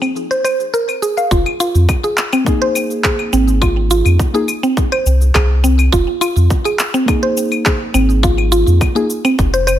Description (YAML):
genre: organic downtempo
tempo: 104 BPM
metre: 4/4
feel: straight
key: F minor pentatonic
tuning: A4 = 441 Hz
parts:
  - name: mallet-like synth pluck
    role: arpeggios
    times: 0.0-9.8 s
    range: C4 to F5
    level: -16 LUFS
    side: right 1 dB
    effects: chorus, digital delay
  - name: electronic claves, shaker and handclaps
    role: drums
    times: 0.0-9.8 s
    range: none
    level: -21 LUFS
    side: left 2 dB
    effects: overdrive
  - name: round analog bass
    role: bass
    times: 1.3-9.8 s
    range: F1 to F2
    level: -13 LUFS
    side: equal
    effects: tube saturation
  - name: electronic kick drum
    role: drums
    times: 1.3-9.5 s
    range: none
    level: -18 LUFS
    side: equal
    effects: overdrive
  - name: muted felt-like synth keys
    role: accompaniment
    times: 2.4-9.1 s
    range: Bb3 to Ab4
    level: -22 LUFS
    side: left 1 dB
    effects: chorus, sidechain pumping, digital delay
room: light reverb, digital ambience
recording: low-pass filter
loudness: -12 LUFS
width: side -12 dB against mid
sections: 0.0-1.3 A section; 1.3-9.8 B section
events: filter sweep 0.0-1.3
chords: 0.0 Fm; 1.3 Fm7